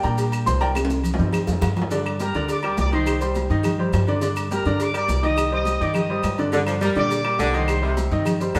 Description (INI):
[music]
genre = latin, salsa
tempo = 208 BPM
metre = 4/4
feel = straight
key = G minor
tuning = A4 = 440 Hz
[part]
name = clear upright piano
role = accompaniment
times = 0.0-8.6 s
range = D3 to C6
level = -27 LUFS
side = equal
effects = none
[part]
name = upright bass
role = bass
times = 0.0-8.6 s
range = C2 to Bb2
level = -27 LUFS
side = equal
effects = none
[part]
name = congas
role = percussion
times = 0.0-8.6 s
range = none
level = -32 LUFS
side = equal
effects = none
[part]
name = cowbell and bongos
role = percussion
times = 0.0-8.6 s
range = none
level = -34 LUFS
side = equal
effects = none
[part]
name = maracas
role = percussion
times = 0.0-8.6 s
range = none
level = -43 LUFS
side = equal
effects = none
[part]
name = agogo bells and timbales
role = percussion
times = 0.2-8.6 s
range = none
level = -34 LUFS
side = equal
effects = none
[part]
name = claves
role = percussion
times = 0.3-8.6 s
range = none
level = -39 LUFS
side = equal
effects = none
[part]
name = bright trumpet section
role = melody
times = 2.2-8.0 s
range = Bb4 to Eb6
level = -28 LUFS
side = equal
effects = none
[part]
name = clear saxophone section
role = second line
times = 6.5-8.6 s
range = C3 to G3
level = -28 LUFS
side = equal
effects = none
[sound]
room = wet stone room reverb, RT60 1.4 s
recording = band playing live in one room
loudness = -22 LUFS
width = mono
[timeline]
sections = 0.0-1.9 A section; 1.9-8.6 B section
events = upright piano solo 0.0-1.9; drum fill 0.8-1.9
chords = 0.0 Gm; 0.8 Cm; 1.9 Gm; 3.1 Cm; 4.2 Gm; 5.4 Cm; 6.5 Gm; 7.7 Cm